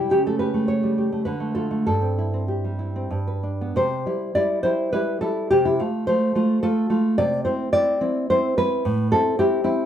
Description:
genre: romantic piece for solo classical guitar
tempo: 90-115 BPM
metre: 3/4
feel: rubato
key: C major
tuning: A4 = 440 Hz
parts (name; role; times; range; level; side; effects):
- nylon-string guitar; solo; 0.0-9.9 s; G2 to D5; -20 LUFS; equal; none
room: moderate stone room reverb, RT60 1.0 s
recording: band playing live in one room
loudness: -20 LUFS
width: side -10 dB against mid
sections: 0.0-3.8 A section; 3.8-9.9 B section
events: none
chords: 0.1 A7/C#; 1.3 Dm; 1.9 C/G; 3.1 G; 3.8 C; 5.5 F/C; 7.2 C; 8.9 Am7

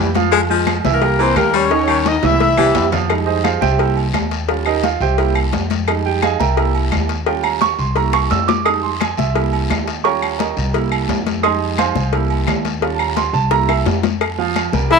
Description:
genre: latin, salsa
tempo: 173 BPM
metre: 4/4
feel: straight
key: F minor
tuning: A4 = 442 Hz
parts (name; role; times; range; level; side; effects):
- bright baritone saxophone; second line; 0.0-2.9 s; Eb3 to Ab3; -20 LUFS; left 12 dB; none
- clear baby grand piano; accompaniment; 0.0-15.0 s; Eb3 to E6; -19 LUFS; right 13 dB; none
- upright bass; bass; 0.0-15.0 s; C2 to F2; -21 LUFS; left 1 dB; none
- agogo bells and timbales; percussion; 0.1-15.0 s; none; -25 LUFS; right 14 dB; none
- congas; percussion; 0.2-15.0 s; none; -25 LUFS; left 13 dB; none
- cowbell and bongos; percussion; 0.2-15.0 s; none; -24 LUFS; left 14 dB; none
- guiro; percussion; 0.2-15.0 s; none; -31 LUFS; left 13 dB; none
- claves; percussion; 0.3-14.7 s; none; -28 LUFS; left 15 dB; none
- clear horn section; melody; 0.9-2.9 s; Bb3 to E5; -18 LUFS; left 5 dB; none
- breathy tenor saxophone; melody; 14.9-15.0 s; E4; -8 LUFS; left 4 dB; none
room: light reverb, small room ambience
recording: 1960s-style stereo with parts hard left and right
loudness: -14 LUFS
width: side -5 dB against mid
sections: 0.0-3.1 A section; 3.1-14.2 B section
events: drum fill 1.7-3.1, 8.1-8.7, 13.5-14.2; grand piano solo 3.1-14.2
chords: 0.3 Fm; 1.0 C7; 1.7 Eb7; 2.4 C; 3.1 Fm7; 3.8 C7; 4.5 Eb7; 5.2 C7; 5.9 Fm7; 6.6 C7; 7.3 Eb7; 8.0 C7; 8.7 Fm7; 9.4 C7; 10.0 Eb7; 10.7 C7; 11.4 Fm7; 12.1 C7; 12.8 Eb7; 13.5 C7; 14.2 F5

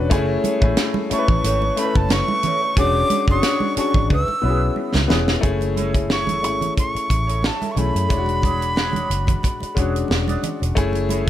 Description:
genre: lush 1970s-style soul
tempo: 90 BPM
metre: 4/4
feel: swing 54% on 16ths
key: F# minor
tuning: A4 = 443 Hz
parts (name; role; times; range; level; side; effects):
- warm grand piano; accompaniment; 0.0-11.3 s; G#3 to C#5; -24 LUFS; left 4 dB; none
- vintage muted fingered electric bass; bass; 0.0-11.3 s; E1 to F#2; -23 LUFS; equal; none
- electric guitar through a small old amp; riff; 0.1-11.3 s; D4 to E5; -30 LUFS; right 4 dB; wah, spring reverb
- tight funk drum kit; drums; 0.1-11.3 s; hi-hat, kick drum, snare drum; -21 LUFS; equal; none
- congas; percussion; 0.4-11.3 s; none; -28 LUFS; right 6 dB; none
- breathy bright jazz flute; melody; 1.1-9.8 s; A5 to E6; -23 LUFS; right 1 dB; tape echo
room: light reverb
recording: none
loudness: -17 LUFS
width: side -12 dB against mid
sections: 0.0-5.4 A section; 5.4-11.3 B section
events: drum fill 4.1-5.4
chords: 0.1 F#m7; 2.8 E13; 4.1 C#m7; 5.4 F#m7; 8.1 E13; 10.8 F#m7

